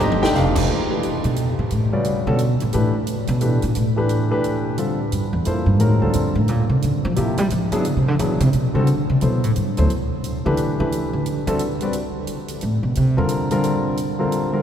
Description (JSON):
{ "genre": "modal jazz", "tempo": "176 BPM", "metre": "3/4", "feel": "swing 63% on 8ths", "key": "unclear", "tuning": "A4 = 439 Hz", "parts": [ { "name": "warm baby grand piano", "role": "accompaniment", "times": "0.0-14.6 s", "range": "C3 to G5", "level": "-22 LUFS", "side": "left 1 dB", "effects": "none" }, { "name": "upright bass", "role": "bass", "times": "0.0-13.3 s", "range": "F1 to G3", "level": "-20 LUFS", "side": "equal", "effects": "none" }, { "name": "compact cocktail drum kit", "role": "drums", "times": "0.0-14.4 s", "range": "crash cymbal, hi-hat, kick drum, snare drum, toms", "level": "-31 LUFS", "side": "right 3 dB", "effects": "none" } ], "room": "wet cathedral reverb, RT60 6.3 s", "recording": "recorded in a church or concert hall", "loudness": "-18 LUFS", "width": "side -9 dB against mid", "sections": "0.7-8.9 A section; 8.9-14.6 A section", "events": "drum fill 0.0-0.3; upright bass solo 0.7-14.6", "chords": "0.0 B7#9b13 (rootless); 0.7 Em11; 4.8 Gm11; 7.8 E9; 8.9 A9sus4; 13.0 Fsus4" }